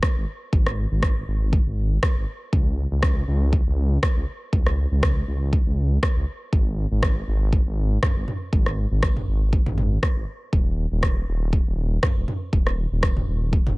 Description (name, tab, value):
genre	afro house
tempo	120 BPM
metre	4/4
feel	swing 55% on 16ths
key	unclear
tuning	A4 = 440 Hz
part	deep house drum kit	drums	0.0-13.8 s	rim click, toms	-28 LUFS	equal	none
part	electronic kick drum	drums	0.0-13.6 s	none	-21 LUFS	equal	none
part	dark detuned saw bass	bass	0.2-13.8 s	D#1 to C#2	-22 LUFS	equal	sidechain pumping
room	little or no reverb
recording	nothing above 10.7 kHz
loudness	-20 LUFS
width	side -24 dB against mid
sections	0.0-13.8 A section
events	none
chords	none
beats	0.03 | 0.53 1.03 1.53 2.03 | 2.53 3.03 3.53 4.03 | 4.53 5.03 5.53 6.03 | 6.53 7.03 7.53 8.03 | 8.53 9.03 9.53 10.03 | 10.53 11.03 11.53 12.03 | 12.53 13.03 13.53